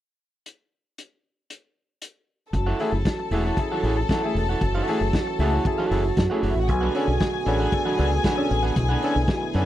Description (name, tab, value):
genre	disco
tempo	116 BPM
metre	4/4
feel	straight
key	F# minor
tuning	A4 = 440 Hz
part	vintage drum kit	drums	0.5-9.7 s	hi-hat, kick drum, snare drum	-25 LUFS	equal	none
part	dark studio string section	second line	2.5-9.7 s	C#4 to A5	-28 LUFS	left 3 dB	none
part	clear baby grand piano	accompaniment	2.5-9.7 s	B2 to A4	-29 LUFS	left 2 dB	none
part	electric guitar at the edge of break-up	accompaniment	2.5-9.7 s	D4 to F#5	-29 LUFS	right 4 dB	none
part	dark French horn section	sustained chords	2.5-9.7 s	D3 to F#4	-29 LUFS	right 4 dB	stereo widening
part	deep dub fingered electric bass	bass	2.5-9.7 s	E1 to F#2	-24 LUFS	equal	none
room	little or no reverb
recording	dry, close 1970s-style studio recording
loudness	-20 LUFS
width	side -13 dB against mid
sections	0.5-2.5 A section; 2.5-9.7 B section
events	none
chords	0.5 N.C.; 2.5 F#m7; 6.7 Bm7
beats	| 0.46 0.98 1.50 2.02 | 2.54 3.06 3.58 4.09 | 4.61 5.13 5.65 6.17 | 6.69 7.21 7.73 8.25 | 8.77 9.29